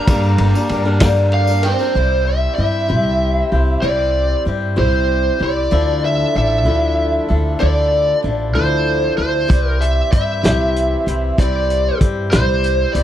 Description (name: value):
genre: folk rock and heartland rock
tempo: 64 BPM (dotted quarters)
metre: 6/8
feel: straight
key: unclear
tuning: A4 = 440 Hz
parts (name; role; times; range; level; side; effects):
- lead guitar through a small cranked amp; melody; 0.0-13.0 s; C5 to Bb5; -19 LUFS; right 1 dB; overdrive
- picked swing-style acoustic guitar; accompaniment; 0.0-13.0 s; G2 to Bb4; -21 LUFS; left 4 dB; none
- accordion; sustained chords; 0.0-13.0 s; E3 to Bb4; -28 LUFS; right 2 dB; stereo widening
- upright bass; bass; 0.1-13.0 s; G1 to G2; -18 LUFS; equal; none
- loose indie drum kit; drums; 0.1-1.8, 9.5-13.0 s; hi-hat, kick drum, ride cymbal, snare drum; -17 LUFS; equal; none
- tambourine; percussion; 0.1-1.9 s; none; -38 LUFS; right 6 dB; none
room: little or no reverb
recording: dry, close 1970s-style studio recording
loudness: -14 LUFS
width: side -11 dB against mid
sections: 0.0-2.0 A section; 2.0-13.0 B section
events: lead electric guitar solo 0.0-2.0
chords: 0.0 Gm; 2.0 C; 5.7 Dmadd9; 9.5 C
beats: | 0.08 1.02 | 1.96 2.90 | 3.84 4.78 | 5.72 6.67 | 7.61 8.55 | 9.50 10.44 | 11.38 12.32